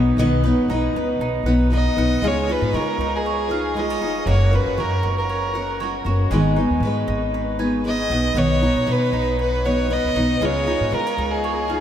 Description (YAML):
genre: acoustic pop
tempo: 117 BPM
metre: 4/4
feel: swing 55% on 16ths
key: Db mixolydian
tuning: A4 = 442 Hz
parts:
  - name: picked steel-string acoustic guitar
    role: accompaniment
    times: 0.0-11.8 s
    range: Ab2 to Cb5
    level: -22 LUFS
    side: left 1 dB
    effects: none
  - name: bowl-back mandolin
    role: arpeggios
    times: 0.0-11.8 s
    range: Ab3 to Ab5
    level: -28 LUFS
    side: right 4 dB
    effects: slapback echo
  - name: upright bass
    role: bass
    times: 0.0-11.8 s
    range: F1 to Db3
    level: -23 LUFS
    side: equal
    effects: none
  - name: rich violin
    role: melody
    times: 1.8-11.8 s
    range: Ab4 to Eb5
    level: -24 LUFS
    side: equal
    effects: none
room: moderate huge ambient reverb, RT60 8.5 s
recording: in a vast, echoing space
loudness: -18 LUFS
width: side -10 dB against mid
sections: 0.0-2.2 A section; 2.2-11.8 B section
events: none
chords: 0.0 Cb; 2.2 Dbadd9; 4.3 Gb; 6.3 Abm; 8.1 Cb; 10.4 Dbadd9